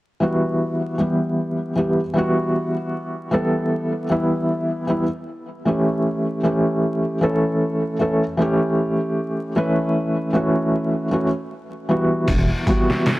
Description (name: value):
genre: trip hop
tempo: 77 BPM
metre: 4/4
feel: swing 57% on 16ths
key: E dorian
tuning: A4 = 439 Hz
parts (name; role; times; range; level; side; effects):
- felt-muted upright piano; accompaniment; 0.2-13.2 s; E3 to B4; -19 LUFS; equal; tremolo, tape echo
- dark detuned saw bass; bass; 12.3-12.5 s; E1; -20 LUFS; equal; none
- trip hop sampler-style drum kit; drums; 12.3-13.2 s; crash cymbal, hi-hat, kick drum, snare drum; -20 LUFS; equal; studio ambience
room: light reverb, digital ambience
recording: dry, gritty hardware recording, vinyl crackle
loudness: -18 LUFS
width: side -18 dB against mid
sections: 0.0-12.3 A section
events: none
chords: 0.0 Emadd9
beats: 0.59 1.37 2.15 | 2.93 3.71 4.49 5.27 | 6.05 6.83 7.60 8.38 | 9.16 9.94 10.72 11.50 | 12.28 13.06